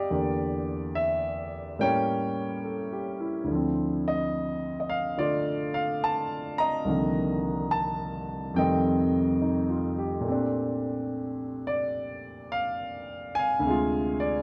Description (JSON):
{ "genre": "solo jazz", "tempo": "71 BPM", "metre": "4/4", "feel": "swing 66% on 8ths", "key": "Bb major", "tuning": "A4 = 442 Hz", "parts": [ { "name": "warm grand piano", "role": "solo", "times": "0.0-14.4 s", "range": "C2 to Bb5", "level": "-28 LUFS", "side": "equal", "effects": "none" } ], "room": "moderate large studio reverb, RT60 1.2 s", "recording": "dark, warm production", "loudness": "-28 LUFS", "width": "mono", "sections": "0.0-14.4 A section", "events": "none", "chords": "0.1 Em7b5; 1.8 A7b9; 3.5 Dm7; 6.9 Cm11; 8.6 F9; 10.3 Bbmaj9; 13.6 Dm7b5", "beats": "| 0.10 0.95 1.79 2.64 | 3.49 4.33 5.18 6.03 | 6.87 7.72 8.57 9.41 | 10.26 11.10 11.95 12.79 | 13.64" }